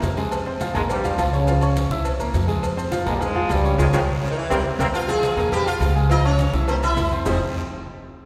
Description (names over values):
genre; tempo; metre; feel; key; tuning
latin, salsa; 208 BPM; 4/4; straight; F minor; A4 = 442 Hz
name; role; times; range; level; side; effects
clear saxophone section; second line; 0.0-0.5, 4.2-4.9 s; C3 to E3; -34 LUFS; equal; none
clear concert grand piano; accompaniment; 0.0-7.4 s; F3 to F6; -28 LUFS; equal; none
upright bass; bass; 0.0-7.4 s; F1 to F2; -25 LUFS; equal; none
congas; percussion; 0.0-7.3 s; none; -33 LUFS; equal; none
cowbell and bongos; percussion; 0.0-7.3 s; none; -35 LUFS; equal; none
guiro; percussion; 0.0-7.3 s; none; -44 LUFS; equal; none
maracas; percussion; 0.0-7.3 s; none; -44 LUFS; equal; none
timbales and agogo bells; percussion; 0.0-7.3 s; none; -35 LUFS; equal; none
bright trombone section; melody; 0.7-4.9 s; G2 to F4; -29 LUFS; equal; none
sitar; melody; 4.9-7.4 s; G3 to F5; -26 LUFS; equal; none
room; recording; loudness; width
wet concert hall reverb, RT60 2.4 s; recorded in a church or concert hall; -21 LUFS; mono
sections
0.0-4.9 A section; 4.9-7.3 B section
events
drum fill 0.0-0.3, 3.8-4.9; band accent 3.8-4.9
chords
0.3 Fm; 0.9 Bbm; 1.5 Db; 2.1 C7; 2.6 Fm; 3.2 Bbm; 3.8 Db; 4.4 C5; 4.9 Fm; 5.5 Bbm; 6.1 Dbadd9; 6.7 C7; 7.3 Fm7